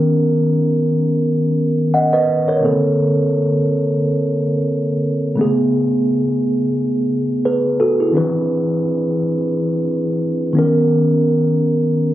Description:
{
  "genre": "R&B",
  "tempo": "87 BPM",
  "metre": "4/4",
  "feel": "swing 58% on 16ths",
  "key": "unclear",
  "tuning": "A4 = 440 Hz",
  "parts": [
    { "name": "mellow tine electric piano", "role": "solo", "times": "0.0-12.1 s", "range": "C3 to F#5", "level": "-14 LUFS", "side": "equal", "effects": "slow stereo tremolo" }
  ],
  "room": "light reverb",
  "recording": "recorded on a phone in the room, club reverb",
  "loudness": "-15 LUFS",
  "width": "side -14 dB against mid",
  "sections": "0.0-12.1 A section",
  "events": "none",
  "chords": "0.0 Bmaj9; 2.6 Bbmaj9; 5.4 Amaj9; 8.1 Cmaj9; 10.5 Bmaj9",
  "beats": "0.55 1.24 1.93 | 2.62 3.31 3.99 4.68 | 5.37 6.06 6.75 7.44 | 8.13 8.82 9.51 10.20 | 10.89 11.58"
}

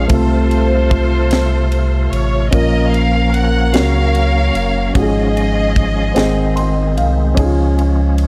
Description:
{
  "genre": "slow gospel",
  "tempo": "49 BPM (dotted quarters)",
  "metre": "6/8",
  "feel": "straight",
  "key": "Db major",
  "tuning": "A4 = 440 Hz",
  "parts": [
    { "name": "clear studio string section", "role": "melody", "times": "0.0-6.9 s", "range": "F4 to Gb5", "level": "-22 LUFS", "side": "equal", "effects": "none" },
    { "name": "dark upright piano", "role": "accompaniment", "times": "0.0-8.3 s", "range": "Ab2 to C6", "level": "-22 LUFS", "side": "equal", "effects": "none" },
    { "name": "bright tonewheel organ", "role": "sustained chords", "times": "0.0-8.3 s", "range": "C3 to F4", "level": "-23 LUFS", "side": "equal", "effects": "fast rotary speaker, chorus vibrato" },
    { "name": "warm sub bass", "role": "bass", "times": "0.0-8.3 s", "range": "Gb1 to Db2", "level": "-18 LUFS", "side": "equal", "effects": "none" },
    { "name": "crisp fusion drum kit", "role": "drums", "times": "0.1-8.3 s", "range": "kick drum, ride cymbal, snare drum", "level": "-21 LUFS", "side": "equal", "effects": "none" }
  ],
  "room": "studio ambience",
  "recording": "none",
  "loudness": "-15 LUFS",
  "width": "mono",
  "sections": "0.0-8.3 A section",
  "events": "upright piano fill 6.2-7.4",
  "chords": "0.1 F/C; 2.5 Bbm; 3.7 Gb/Db; 4.9 Db/Ab; 6.2 Ab; 7.4 Db",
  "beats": "| 0.09 1.31 | 2.52 3.73 | 4.95 6.16 | 7.37"
}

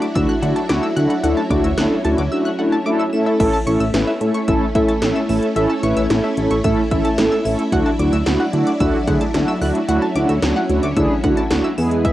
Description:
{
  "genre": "synth-pop",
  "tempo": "111 BPM",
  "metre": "4/4",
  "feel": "straight",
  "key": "unclear",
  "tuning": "A4 = 440 Hz",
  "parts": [
    { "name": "mellow synth brass", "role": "accompaniment", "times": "0.0-12.1 s", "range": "G#3 to B4", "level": "-18 LUFS", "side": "equal", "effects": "chorus, cassette tape" },
    { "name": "string machine, violins", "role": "sustained chords", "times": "0.0-12.1 s", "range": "E3 to G#4", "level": "-23 LUFS", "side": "equal", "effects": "ensemble chorus, cassette tape" },
    { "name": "analog pluck", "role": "arpeggios", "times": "0.0-12.1 s", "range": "E5 to E7", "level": "-28 LUFS", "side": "left 1 dB", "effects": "chorus, cassette tape, analog delay" },
    { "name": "80s electronic pad drums", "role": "drums", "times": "0.0-12.1 s", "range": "crash cymbal, hi-hat, kick drum, snare drum", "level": "-22 LUFS", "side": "equal", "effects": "overdrive, cassette tape" },
    { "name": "chorused synth bass", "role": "bass", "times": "0.2-12.1 s", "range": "A1 to D3", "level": "-21 LUFS", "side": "equal", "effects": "none" }
  ],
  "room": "moderate booth ambience, RT60 0.2 s",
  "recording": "home recording on cassette",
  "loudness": "-15 LUFS",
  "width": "side -14 dB against mid",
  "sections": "0.0-3.4 A section; 3.4-12.1 B section",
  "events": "silent gap 2.3-3.4",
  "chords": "0.0 Dadd9; 3.1 A; 7.7 Dadd9",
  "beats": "0.16 0.70 | 1.24 1.78 2.32 2.86 | 3.40 3.94 4.48 5.02 | 5.56 6.10 6.64 7.18 | 7.72 8.26 8.80 9.35 | 9.88 10.43 10.97 11.51 | 12.05"
}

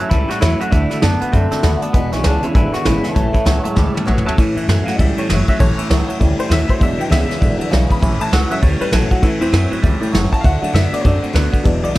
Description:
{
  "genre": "rockabilly",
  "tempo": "198 BPM",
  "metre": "4/4",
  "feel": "swing 61% on 8ths",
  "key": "A major",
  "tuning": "A4 = 439 Hz",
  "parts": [
    { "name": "electric guitar through a small old amp", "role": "melody", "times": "0.0-3.9 s", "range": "A3 to F#4", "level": "-22 LUFS", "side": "left 1 dB", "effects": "spring reverb, plate reverb, tape echo" },
    { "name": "honky-tonk upright piano", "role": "accompaniment", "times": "0.0-12.0 s", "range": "E3 to B5", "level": "-24 LUFS", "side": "left 1 dB", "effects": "plate reverb" },
    { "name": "picked steel-string acoustic guitar", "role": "accompaniment", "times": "0.0-12.0 s", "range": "E2 to F#4", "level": "-24 LUFS", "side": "left 3 dB", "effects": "plate reverb" },
    { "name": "twangy electric guitar", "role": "riff", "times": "0.0-12.0 s", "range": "E2 to C4", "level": "-22 LUFS", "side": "right 3 dB", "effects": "phaser" },
    { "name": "upright bass", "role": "bass", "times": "0.0-12.0 s", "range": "E1 to F#2", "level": "-18 LUFS", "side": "equal", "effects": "none" },
    { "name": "soft brush drum kit", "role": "drums", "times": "0.1-12.0 s", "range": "hi-hat, kick drum, ride cymbal, snare drum, toms", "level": "-18 LUFS", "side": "equal", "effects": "none" }
  ],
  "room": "light reverb",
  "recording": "none",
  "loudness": "-13 LUFS",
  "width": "side -17 dB against mid",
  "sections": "0.0-4.4 A section; 4.4-12.0 B section",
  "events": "drum fill 3.8-4.4; honky-tonk piano solo 4.4-12.0",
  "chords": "0.0 A; 0.7 D; 1.9 E7; 3.2 A; 6.8 E7; 8.0 A; 10.4 D",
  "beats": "0.11 0.42 | 0.72 1.03 1.33 1.64 | 1.94 2.25 2.55 2.86 | 3.16 3.47 3.77 4.08 | 4.38 4.68 4.99 5.29 | 5.60 5.90 6.20 6.51 | 6.81 7.11 7.42 7.72 | 8.02 8.32 8.63 8.93 | 9.23 9.53 9.84 10.14 | 10.44 10.74 11.04 11.35 | 11.65 11.95"
}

